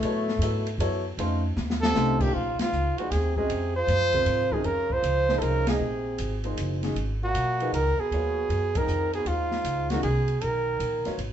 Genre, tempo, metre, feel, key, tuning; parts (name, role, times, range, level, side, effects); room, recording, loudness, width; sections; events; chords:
modal jazz; 156 BPM; 3/4; swing 66% on 8ths; Bb minor; A4 = 438 Hz
trombone with bucket mute; second line; 0.0-11.2 s; Ab2 to A3; -34 LUFS; left 4 dB
warm grand piano; accompaniment; 0.0-11.2 s; Bb2 to E5; -32 LUFS; left 1 dB
upright bass; bass; 0.0-11.3 s; Gb1 to A2; -28 LUFS; equal
open jazz drum kit; drums; 0.0-11.3 s; crash cymbal, hi-hat, kick drum, ride cymbal, snare drum; -34 LUFS; left 1 dB
mellow trumpet; melody; 1.8-11.2 s; F4 to C5; -26 LUFS; right 2 dB
wet studio reverb, RT60 0.6 s; band playing live in one room, nothing above 8.0 kHz; -23 LUFS; side -10 dB against mid
0.0-2.3 A section; 2.3-11.3 B section
trombone solo 0.0-2.3; drum fill 1.6-1.9; band accent 2.5, 5.6, 8.7
0.0 Esus4; 1.2 F7b13; 2.3 Bbm9; 7.0 Abm9